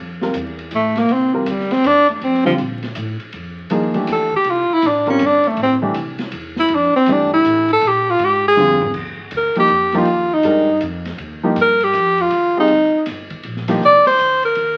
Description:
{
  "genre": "modal jazz",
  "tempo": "160 BPM",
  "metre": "3/4",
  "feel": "swing 65% on 8ths",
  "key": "F major, Eb major from 8.9 s",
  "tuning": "A4 = 437 Hz",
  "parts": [
    { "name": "upright bass", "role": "bass", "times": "0.0-14.8 s", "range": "G1 to Bb2", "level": "-33 LUFS", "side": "equal", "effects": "none" },
    { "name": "warm upright piano", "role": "accompaniment", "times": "0.2-13.8 s", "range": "D3 to Bb4", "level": "-23 LUFS", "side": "equal", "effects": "none" },
    { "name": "open jazz drum kit", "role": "drums", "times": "0.2-14.7 s", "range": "crash cymbal, hi-hat, kick drum, ride cymbal, snare drum, toms", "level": "-34 LUFS", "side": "equal", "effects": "none" },
    { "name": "breathy tenor saxophone", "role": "melody", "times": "0.8-14.8 s", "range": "E3 to D5", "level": "-16 LUFS", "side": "equal", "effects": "none" }
  ],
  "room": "moderate large studio reverb, RT60 1.1 s",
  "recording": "very old 78 rpm record, vinyl crackle",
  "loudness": "-16 LUFS",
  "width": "mono",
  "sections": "0.0-8.9 A section; 8.9-14.8 A section",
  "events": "tenor saxophone solo 0.0-14.8; drum fill 8.6-8.9",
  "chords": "0.0 Fmaj9; 7.8 Bb7; 8.9 Ebmaj9"
}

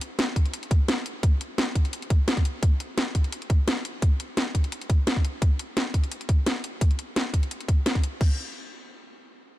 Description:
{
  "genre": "liquid drum and bass",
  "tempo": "172 BPM",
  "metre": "4/4",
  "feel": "swing 54% on 16ths",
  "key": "none",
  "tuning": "none",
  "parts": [
    { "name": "garage drum kit", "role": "drums", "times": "0.0-8.3 s", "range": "crash cymbal, hi-hat, snare drum", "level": "-28 LUFS", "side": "equal", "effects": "none" },
    { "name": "electronic kick drum", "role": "drums", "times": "0.4-8.3 s", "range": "none", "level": "-21 LUFS", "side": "equal", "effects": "none" }
  ],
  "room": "little or no reverb",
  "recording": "dark, warm production",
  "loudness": "-23 LUFS",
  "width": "side -16 dB against mid",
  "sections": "0.0-8.2 A section; 8.2-9.6 B section",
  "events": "none",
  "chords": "none"
}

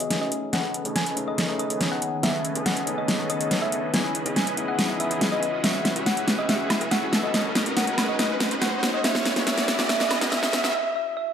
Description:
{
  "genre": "future bass",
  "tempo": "141 BPM",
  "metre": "4/4",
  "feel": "half-time",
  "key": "unclear",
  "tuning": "A4 = 440 Hz",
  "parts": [
    { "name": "thumb-piano-like synth pluck", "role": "melody", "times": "0.0-11.3 s", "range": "D#5 to G#5", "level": "-29 LUFS", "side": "equal", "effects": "chorus, tape echo" },
    { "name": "bright tine electric piano", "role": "accompaniment", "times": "0.0-5.4 s", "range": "A3 to G#5", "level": "-32 LUFS", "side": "left 2 dB", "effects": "none" },
    { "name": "ethereal airy pad", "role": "sustained chords", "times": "0.0-10.7 s", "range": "D#3 to G#5", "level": "-38 LUFS", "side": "equal", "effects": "none" },
    { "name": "dense compressed supersaw", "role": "riff", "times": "0.0-10.7 s", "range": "C#4 to E5", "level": "-30 LUFS", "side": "equal", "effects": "low-pass filter" },
    { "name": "dubstep drum kit", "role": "drums", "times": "0.0-10.7 s", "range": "hi-hat, snare drum, woodblock", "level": "-24 LUFS", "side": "equal", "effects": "none" },
    { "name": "riser", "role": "sound effects", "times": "3.0-10.7 s", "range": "none", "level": "-32 LUFS", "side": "right 1 dB", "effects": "none" },
    { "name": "concert harp", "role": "arpeggios", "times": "5.6-11.3 s", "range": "C#4 to F#4", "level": "-35 LUFS", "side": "left 4 dB", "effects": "tape echo" }
  ],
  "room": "wet digital room reverb, RT60 1.1 s",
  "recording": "high-pass filter",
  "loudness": "-22 LUFS",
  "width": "side -8 dB against mid",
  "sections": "0.0-11.3 A section",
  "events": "build-up 0.0-11.3; drum fill 0.0-10.7; filter sweep on supersaw synth 0.0-11.3; riser 3.0-10.7; break 10.7-11.3",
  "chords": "0.3 B13; 3.9 C#m9; 5.6 E69; 7.1 Amaj9#11; 10.7 N.C."
}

